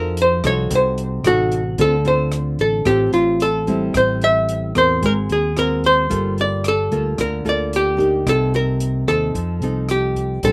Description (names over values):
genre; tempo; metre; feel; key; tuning
bossa nova; 111 BPM; 4/4; straight; D minor; A4 = 436 Hz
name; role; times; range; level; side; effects
archtop guitar, miked and amplified; melody; 0.0-10.5 s; F4 to E5; -20 LUFS; equal; slapback echo
nylon-string guitar; accompaniment; 0.0-10.5 s; A2 to Bb4; -25 LUFS; equal; slapback echo
fingered electric bass; bass; 0.0-10.5 s; G1 to F2; -26 LUFS; equal; none
open jazz drum kit; drums; 0.2-10.5 s; hi-hat, kick drum, rim click; -32 LUFS; equal; none
room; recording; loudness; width
little or no reverb; recorded outdoors, with no room sound; -18 LUFS; mono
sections
0.0-1.8 A section; 1.8-10.5 B section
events
hollow-body jazz guitar solo 0.0-1.8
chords
0.0 F7b9; 1.8 Dm7; 3.9 Am7; 5.0 G#9; 6.1 Gm9; 8.3 Cm7; 9.3 F7